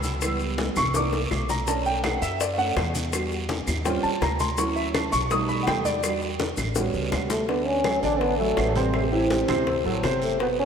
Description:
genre	Afro-Cuban jazz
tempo	165 BPM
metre	4/4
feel	straight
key	D major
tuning	A4 = 441 Hz
part	warm concert grand piano	accompaniment	0.0-10.7 s	B2 to D#6	-25 LUFS	right 2 dB	analog chorus
part	upright bass	bass	0.0-10.7 s	G1 to F#2	-30 LUFS	equal	none
part	congas	percussion	0.0-10.7 s	none	-34 LUFS	left 2 dB	none
part	guiro	percussion	0.0-10.7 s	none	-37 LUFS	right 6 dB	none
part	maracas	percussion	0.0-7.5 s	none	-37 LUFS	left 8 dB	none
part	bongos	percussion	0.2-10.6 s	none	-32 LUFS	left 6 dB	none
part	claves	percussion	0.2-10.2 s	none	-38 LUFS	right 5 dB	none
part	breathy trombone	melody	7.3-10.7 s	G3 to D4	-25 LUFS	left 1 dB	ping-pong delay
room	wet lush hall reverb, RT60 2.6 s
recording	dreamy mix soaked in reverb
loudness	-22 LUFS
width	side -7 dB against mid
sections	0.0-7.5 A section; 7.5-10.7 B section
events	grand piano solo 0.0-7.5; drum fill 0.9-1.7, 6.8-7.5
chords	0.2 C#m7b5; 0.9 C13; 1.7 Bm9; 3.1 Em7; 3.9 Eb13; 4.6 Dmaj7; 5.3 Baug7; 6.0 Em7; 6.8 A13; 7.5 Dmaj7; 8.9 Am7; 9.7 D7

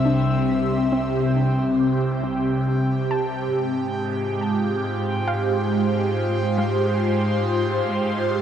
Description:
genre	ambient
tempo	69 BPM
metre	4/4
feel	straight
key	unclear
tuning	A4 = 440 Hz
part	airy breathy pad	sustained chords	0.0-8.4 s	C3 to E5	-20 LUFS	equal	chorus, phaser
part	dark chamber cello section	bass	0.0-8.4 s	C2 to Ab2	-28 LUFS	equal	none
part	soft round pluck	arpeggios	0.1-8.4 s	Ab3 to A5	-32 LUFS	equal	wide subtle chorus, tape echo
room	wet huge ambient reverb, RT60 6.9 s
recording	none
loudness	-20 LUFS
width	side -9 dB against mid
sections	0.0-8.4 A section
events	none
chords	0.0 C; 3.5 Ab6

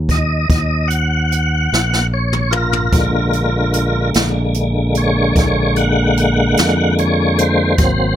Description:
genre	slow blues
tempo	49 BPM (dotted quarters)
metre	12/8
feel	straight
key	unclear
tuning	A4 = 440 Hz
part	fingered electric bass	bass	0.0-8.2 s	Ab1 to F2	-17 LUFS	equal	none
part	tonewheel organ	sustained chords	0.1-8.2 s	D3 to Gb5	-16 LUFS	equal	slow rotary speaker, overdrive, chorus vibrato
part	jazz brush drum kit	drums	0.1-8.0 s	hi-hat, kick drum, snare drum, toms	-18 LUFS	equal	none
room	little or no reverb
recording	none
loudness	-13 LUFS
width	side -10 dB against mid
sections	0.0-8.2 A section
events	tonewheel organ solo 0.0-8.2; drum fill 1.7-2.9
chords	0.0 Eb7(no3); 2.9 Bb7

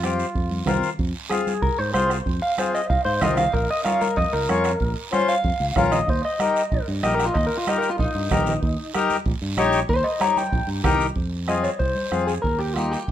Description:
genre	latin, cumbia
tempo	189 BPM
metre	4/4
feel	straight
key	F minor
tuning	A4 = 440 Hz
part	electric guitar at the edge of break-up	melody	0.0-13.1 s	Eb4 to Bb5	-24 LUFS	left 1 dB	spring reverb
part	accordion	accompaniment	0.0-13.0 s	Bb3 to Db5	-24 LUFS	left 4 dB	none
part	fingered electric bass	bass	0.0-13.1 s	Bb1 to Ab2	-26 LUFS	right 1 dB	none
part	bombo	percussion	0.0-13.1 s	none	-27 LUFS	right 2 dB	none
part	congas	percussion	0.0-12.9 s	none	-29 LUFS	right 2 dB	none
part	guiro	percussion	0.0-13.1 s	none	-37 LUFS	right 7 dB	none
room	moderate studio ambience, RT60 0.5 s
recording	minimal, uncompressed stereo recording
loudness	-20 LUFS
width	side -11 dB against mid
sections	1.0-11.2 A section; 11.2-13.1 B section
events	clean electric guitar solo 1.0-11.2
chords	0.0 F5; 1.0 Fm; 3.5 Bbm; 6.1 Eb; 11.2 Fm; 12.4 Eb

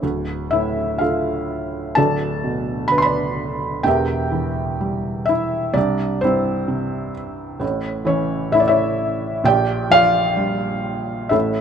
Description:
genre	classical, lyrical solo piano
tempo	64 BPM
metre	4/4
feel	uneven beats, rubato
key	unclear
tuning	A4 = 438 Hz
part	felt-muted upright piano	solo	0.0-11.6 s	D1 to C6	-18 LUFS	equal	none
room	light reverb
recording	none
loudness	-18 LUFS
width	side -7 dB against mid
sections	0.0-11.6 A section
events	none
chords	0.0 Dm; 2.0 Bm7/D; 3.9 Edim; 5.8 C; 7.6 A; 9.4 Gm7/Bb

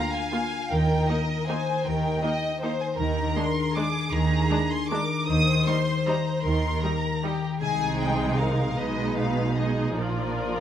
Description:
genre	classical, orchestral ballroom waltz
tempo	132-172 BPM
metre	3/4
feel	rubato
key	Eb major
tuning	A4 = 443 Hz
part	warm studio violin section	melody	0.0-10.6 s	D5 to Eb6	-30 LUFS	left 1 dB	none
part	warm studio violin section	second line	0.0-10.6 s	G4 to F5	-31 LUFS	equal	none
part	warm studio viola section	accompaniment	0.0-10.6 s	F3 to F4	-31 LUFS	right 1 dB	none
part	concert harp	arpeggios	0.0-10.6 s	Bb2 to Eb5	-30 LUFS	left 7 dB	none
part	dark studio cello section	bass	0.7-10.6 s	Bb2 to Eb3	-30 LUFS	right 3 dB	none
part	rich studio double bass section	bass	0.7-10.6 s	Bb1 to Eb2	-30 LUFS	right 3 dB	none
room	light reverb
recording	close, detailed microphones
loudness	-23 LUFS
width	side -10 dB against mid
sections	0.0-10.6 A section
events	none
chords	0.0 Bb/D; 0.7 Eb; 3.0 Bb7/Eb; 5.3 Eb; 7.6 Ab/C; 8.8 Abm/Cb; 10.0 Bb

